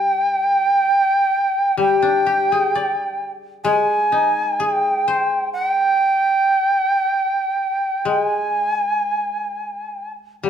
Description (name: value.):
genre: japanese traditional, Japanese chamber music.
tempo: free time.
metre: none.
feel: none.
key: G miyako bushi.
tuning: A4 = 440 Hz.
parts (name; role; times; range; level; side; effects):
shakuhachi; melody; 0.0-10.5 s; G5 to Ab5; -17 LUFS; right 1 dB; none.
koto; accompaniment; 0.0-10.5 s; G3 to D5; -22 LUFS; left 5 dB; none.
room: moderate recital hall reverb, RT60 1.3 s.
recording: minimal, uncompressed stereo recording.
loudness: -16 LUFS.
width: side -8 dB against mid.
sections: 0.0-10.5 A section.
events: none.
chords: none.